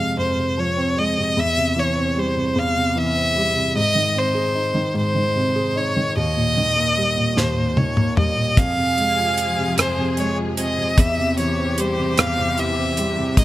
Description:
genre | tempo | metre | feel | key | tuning
six-eight pop ballad | 50 BPM (dotted quarters) | 6/8 | straight | unclear | A4 = 440 Hz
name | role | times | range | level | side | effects
rich violin | melody | 0.0-13.4 s | C5 to F5 | -21 LUFS | equal | digital delay
warm baby grand piano | accompaniment | 0.0-13.4 s | Eb2 to Ab4 | -22 LUFS | equal | none
damped 70s drum kit | drums | 7.4-13.4 s | hi-hat, kick drum, rim click, snare drum, toms | -18 LUFS | equal | none
warm studio string section | sustained chords | 8.6-13.4 s | C3 to Ab4 | -28 LUFS | left 3 dB | none
room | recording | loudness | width
light reverb, small room ambience | none | -17 LUFS | side -15 dB against mid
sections
0.0-13.4 A section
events
drum fill 7.4-8.6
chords
0.0 Fm; 1.4 C/E; 3.8 Ab; 6.2 Eb; 8.6 Fm; 11.0 C/E

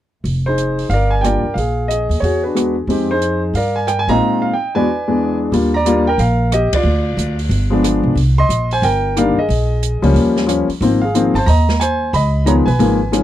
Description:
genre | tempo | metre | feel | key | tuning
jazz piano trio | 182 BPM | 4/4 | swing 63% on 8ths | Eb major | A4 = 445 Hz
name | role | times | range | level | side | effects
upright bass | bass | 0.2-13.2 s | F1 to G2 | -17 LUFS | equal | none
open jazz drum kit | drums | 0.3-13.2 s | hi-hat, kick drum, ride cymbal, rim click, snare drum | -26 LUFS | right 2 dB | none
warm concert grand piano | melody | 0.5-13.2 s | Fb2 to C6 | -15 LUFS | left 1 dB | none
room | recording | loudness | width
little or no reverb | dry, close 1970s-style studio recording | -13 LUFS | side -12 dB against mid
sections
0.2-5.5 A section; 5.5-13.2 B section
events
band accent 6.7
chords
0.2 Fm7; 0.9 Gm7; 1.6 Bb7sus4; 2.2 E9; 2.9 Fm7; 3.5 Gm7; 4.2 Bb7sus4; 4.9 E7; 5.5 Ebmaj9; 6.8 Dm; 7.5 G7b9; 8.2 Cm7; 9.5 Bbm7; 10.2 Eb9; 10.8 Ab6; 12.1 Db9

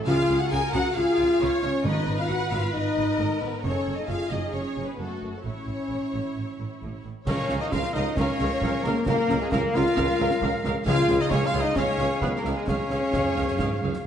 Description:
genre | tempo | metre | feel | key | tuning
cinematic, heroic adventure film score | 133 BPM | 4/4 | straight | Db mixolydian | A4 = 436 Hz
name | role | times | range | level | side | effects
rich symphonic viola section | accompaniment | 0.0-13.9 s | E4 to F5 | -34 LUFS | right 1 dB | none
warm symphonic violin section | melody | 0.1-14.1 s | Ab4 to Ab5 | -34 LUFS | left 3 dB | none
clear symphonic violin section | second line | 0.1-14.0 s | Ab4 to Ab5 | -36 LUFS | left 1 dB | none
mellow French horn section | sustained chords | 0.1-14.0 s | Ab3 to Ab4 | -27 LUFS | left 2 dB | none
clear symphonic cello section | bass | 0.1-13.9 s | Db2 to Db3 | -33 LUFS | right 2 dB | none
rich symphonic double bass section | bass | 0.1-13.9 s | Gb1 to Db2 | -32 LUFS | right 3 dB | none
timpani | percussion | 0.1-2.5, 7.3-7.9, 10.9-11.5 s | Ab2 to Db3 | -31 LUFS | equal | none
mellow clarinet | second line | 7.3-14.1 s | Ab4 to Bb4 | -34 LUFS | left 2 dB | none
mellow cor anglais | second line | 7.3-14.1 s | Ab3 to F4 | -34 LUFS | right 2 dB | none
silver concert flute | second line | 7.3-14.1 s | F5 | -34 LUFS | equal | none
clear tuba | bass | 7.3-13.9 s | Db2 | -32 LUFS | right 4 dB | none
clash cymbals, concert bass drum and concert snare drum | drums | 7.3-14.0 s | none | -32 LUFS | equal | none
room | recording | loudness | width
wet scoring stage reverb, RT60 1.6 s | nothing above 11.0 kHz | -22 LUFS | side -9 dB against mid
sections
0.0-7.3 A section; 7.3-14.1 B section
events
none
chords
0.1 Db; 1.8 Abm; 3.6 Gbm; 5.4 A; 7.3 Bbm/Db; 10.9 Db

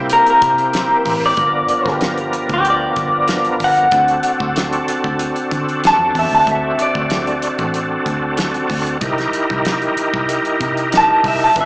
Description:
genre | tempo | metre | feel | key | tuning
straight-eighth soul blues | 94 BPM | 4/4 | straight | unclear | A4 = 440 Hz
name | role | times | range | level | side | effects
overdriven tonewheel organ | accompaniment | 0.0-11.7 s | F3 to B4 | -19 LUFS | equal | slow rotary speaker, chorus vibrato, slapback echo
vintage muted fingered electric bass | bass | 0.0-11.7 s | G1 to D3 | -26 LUFS | equal | none
electric guitar through a small old amp | melody | 0.1-11.7 s | G4 to A5 | -14 LUFS | equal | spring reverb, slapback echo
cloth-damped thuddy drum kit | drums | 0.1-11.7 s | hi-hat, kick drum, snare drum | -24 LUFS | equal | none
room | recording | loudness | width
light reverb, small room ambience | live gig heard through the venue's PA, club reverb, small speaker sound | -14 LUFS | side -21 dB against mid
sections
0.0-11.7 A section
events
none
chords
0.0 C7; 1.4 G7#9; 3.9 D7; 9.0 C7#9

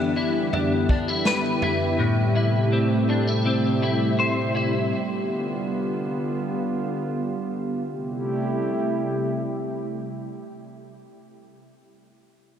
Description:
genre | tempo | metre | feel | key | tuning
dream pop | 82 BPM | 4/4 | straight | A minor | A4 = 440 Hz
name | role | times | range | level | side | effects
warbly tape-like pad | sustained chords | 0.0-10.9 s | C3 to G4 | -25 LUFS | right 1 dB | chorus, built-in reverb
clean electric guitar | arpeggios | 0.0-5.0 s | A2 to C5 | -23 LUFS | left 2 dB | ensemble chorus, tape echo
vintage drum kit | drums | 0.5-1.8 s | kick drum, snare drum, toms | -27 LUFS | equal | none
room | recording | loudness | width
moderate huge ambient reverb, RT60 6.2 s | none | -22 LUFS | side -9 dB against mid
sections
0.0-7.8 A section; 7.8-10.8 B section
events
none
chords
0.0 Em7; 2.0 Am7; 4.9 G7; 7.8 Am7

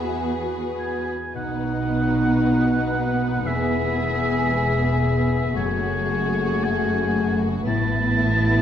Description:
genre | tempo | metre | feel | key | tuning
cinematic, emotional film score for orchestra | 52-59 BPM | 4/4 | rubato | E major | A4 = 440 Hz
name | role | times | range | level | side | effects
warm symphonic violin section | melody | 0.0-8.6 s | G#4 to E5 | -37 LUFS | left 3 dB | none
warm symphonic violin section | second line | 0.0-8.6 s | D#4 to B4 | -31 LUFS | left 4 dB | none
warm symphonic viola section | accompaniment | 0.0-8.6 s | A3 to F#4 | -29 LUFS | right 2 dB | none
concert harp | arpeggios | 0.0-8.6 s | E2 to G#4 | -29 LUFS | left 5 dB | none
warm symphonic cello section | bass | 0.0-8.6 s | E2 to B2 | -28 LUFS | right 3 dB | none
clear oboe | second line | 0.8-8.6 s | C#5 to A5 | -26 LUFS | right 1 dB | none
mellow French horn section | sustained chords | 1.3-8.6 s | A3 to G#4 | -26 LUFS | left 2 dB | none
warm symphonic double bass section | bass | 1.3-8.6 s | E1 to B1 | -27 LUFS | right 1 dB | none
room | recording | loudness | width
wet scoring stage reverb, RT60 1.6 s | dark, warm production | -20 LUFS | side -9 dB against mid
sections
0.0-1.3 A section; 1.3-8.6 A section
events
none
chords
0.0 Eadd9; 1.3 B; 3.5 E; 5.6 F#madd9; 7.7 Asus2

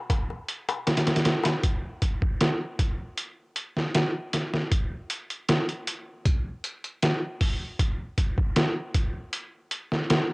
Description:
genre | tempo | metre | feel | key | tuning
trip hop | 78 BPM | 4/4 | straight | none | none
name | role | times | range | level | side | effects
trip hop sampler-style drum kit | drums | 0.1-10.3 s | hi-hat, kick drum, snare drum | -24 LUFS | equal | overdrive
darbuka | percussion | 0.1-1.6 s | none | -34 LUFS | left 5 dB | none
room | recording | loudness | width
light reverb | home recording on cassette | -25 LUFS | side -25 dB against mid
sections
0.0-1.6 A section; 1.6-10.3 B section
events
none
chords
none

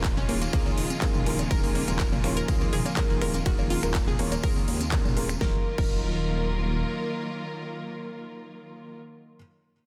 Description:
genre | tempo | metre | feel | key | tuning
progressive house | 123 BPM | 4/4 | straight | Eb minor | A4 = 440 Hz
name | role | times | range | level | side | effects
rich studio string section | sustained chords | 0.0-9.0 s | Db3 to Bb4 | -36 LUFS | equal | sidechain pumping
analog pluck | arpeggios | 0.0-9.4 s | Bb3 to Bb4 | -37 LUFS | equal | chorus, vintage 12-bit sampler grit, sidechain pumping, digital delay
dark detuned saw bass | bass | 0.0-6.8 s | Eb1 to Eb2 | -33 LUFS | equal | sidechain pumping
big-room dance drum kit | drums | 0.0-5.9 s | crash cymbal, finger snaps, handclaps, hi-hat, ride cymbal, snare drum | -37 LUFS | equal | none
breakbeat sampler-style drum kit | drums | 0.0-5.4 s | ride cymbal, snare drum | -47 LUFS | equal | none
electronic kick drum | drums | 0.0-5.9 s | none | -29 LUFS | equal | none
tambourine | percussion | 0.0-5.4 s | none | -44 LUFS | equal | none
electronic toms, congas and bongos | percussion | 0.2-5.4 s | none | -39 LUFS | equal | none
felt-muted upright piano | stabs | 0.3-9.4 s | Eb3 to Db5 | -36 LUFS | equal | sidechain pumping, digital delay
room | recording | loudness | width
light reverb, digital ambience | dense, heavily limited modern master | -26 LUFS | mono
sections
0.0-5.4 A section; 5.4-9.3 B section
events
drop 0.0-5.4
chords
0.0 Bbm7/Eb; 5.4 Ebmadd9

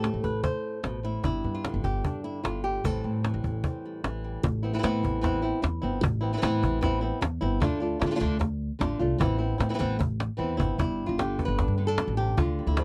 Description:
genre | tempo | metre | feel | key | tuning
flamenco | 151 BPM | 4/4 | straight | A minor | A4 = 436 Hz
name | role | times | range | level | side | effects
flamenco guitar | melody | 0.0-12.8 s | G2 to C5 | -32 LUFS | equal | none
upright bass | bass | 0.0-12.8 s | G1 to D3 | -32 LUFS | equal | none
cajon | percussion | 0.0-12.8 s | none | -32 LUFS | equal | none
room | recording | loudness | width
little or no reverb | dry, close 1970s-style studio recording | -28 LUFS | mono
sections
0.0-4.4 A section; 4.4-10.8 B section; 10.8-12.8 C section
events
drum fill 10.2-10.8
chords
0.0 Am; 1.2 G; 2.8 Am7; 4.4 Amadd9; 7.6 Dm; 9.2 Amadd9; 10.8 G

